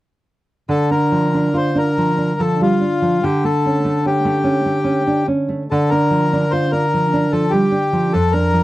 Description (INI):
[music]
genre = romantic duo for bandoneon and classical guitar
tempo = 73 BPM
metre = 3/4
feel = rubato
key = D minor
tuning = A4 = 440 Hz
[part]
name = bandoneon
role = melody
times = 0.7-8.6 s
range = F4 to C5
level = -19 LUFS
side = left 3 dB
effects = none
[part]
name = nylon-string guitar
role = accompaniment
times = 0.7-8.6 s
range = F2 to F4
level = -16 LUFS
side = right 1 dB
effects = none
[sound]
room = light reverb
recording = dry, close 1970s-style studio recording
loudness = -15 LUFS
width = side -16 dB against mid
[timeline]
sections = 0.7-8.6 A section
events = none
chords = 0.7 Dm; 3.2 A7/D; 5.7 Dm